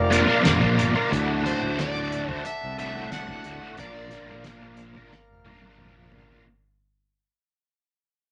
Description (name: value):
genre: psychedelic rock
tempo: 90 BPM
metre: 4/4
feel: straight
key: unclear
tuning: A4 = 438 Hz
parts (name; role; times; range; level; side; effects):
- overdriven slide guitar; melody; 0.0-4.4 s; C5 to F#5; -35 LUFS; equal; none
- pedal harmonium; sustained chords; 0.0-6.4 s; A4 to Bb5; -35 LUFS; equal; none
- fuzz fingered electric bass; bass; 0.0-6.4 s; E1 to Bb2; -33 LUFS; equal; overdrive
- cranked stack guitar; riff; 0.1-6.5 s; D2 to Bb4; -27 LUFS; equal; overdrive, rotary speaker
- cloth-damped thuddy drum kit; drums; 0.1-6.4 s; hi-hat, kick drum, snare drum, toms; -30 LUFS; equal; none
room: moderate club reverb, RT60 0.8 s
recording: faint mains hum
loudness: -24 LUFS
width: mono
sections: 0.0-6.5 A section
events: fade-out 0.0-6.5; drum fill 5.1-6.5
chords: 0.0 Bb; 1.1 D; 3.8 Bb